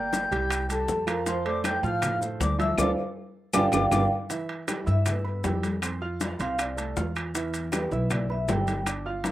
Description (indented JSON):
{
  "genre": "Afro-Cuban jazz",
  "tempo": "158 BPM",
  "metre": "4/4",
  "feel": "straight",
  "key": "G major from 4.3 s",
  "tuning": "A4 = 439 Hz",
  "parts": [
    { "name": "vibraphone with soft mallets", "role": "melody", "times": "0.0-9.3 s", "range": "A4 to G5", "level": "-30 LUFS", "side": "equal", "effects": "slapback echo" },
    { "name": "mellow silver concert flute", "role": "second line", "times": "0.0-4.0 s", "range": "A5 to G6", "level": "-31 LUFS", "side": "left 4 dB", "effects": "slapback echo" },
    { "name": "warm baby grand piano", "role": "accompaniment", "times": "0.0-9.3 s", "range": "E3 to F6", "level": "-32 LUFS", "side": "right 4 dB", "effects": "slapback echo" },
    { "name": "upright bass", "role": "bass", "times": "0.0-9.3 s", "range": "G1 to A2", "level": "-30 LUFS", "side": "equal", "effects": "none" },
    { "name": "bongos", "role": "percussion", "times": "0.1-9.3 s", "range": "none", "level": "-36 LUFS", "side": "left 5 dB", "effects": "none" },
    { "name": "congas", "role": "percussion", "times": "0.1-9.3 s", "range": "none", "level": "-34 LUFS", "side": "left 2 dB", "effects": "none" },
    { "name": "maracas", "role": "percussion", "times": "0.1-9.3 s", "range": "none", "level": "-37 LUFS", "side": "left 5 dB", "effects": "none" },
    { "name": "timbales", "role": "percussion", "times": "0.1-9.3 s", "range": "none", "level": "-34 LUFS", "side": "right 4 dB", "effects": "none" },
    { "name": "claves", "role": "percussion", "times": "0.5-9.1 s", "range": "none", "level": "-38 LUFS", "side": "left 5 dB", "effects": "none" }
  ],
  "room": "little or no reverb",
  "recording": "recorded outdoors, with no room sound",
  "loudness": "-24 LUFS",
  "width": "side -14 dB against mid",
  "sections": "0.0-4.3 A section; 4.3-9.3 B section",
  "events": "drum fill 2.8-4.3; band accent 2.8-4.3; vibraphone solo 4.3-9.3",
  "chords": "0.0 Gm; 0.5 C5; 1.3 Dm7; 3.5 G5; 4.3 G6; 5.8 F6; 7.3 Em"
}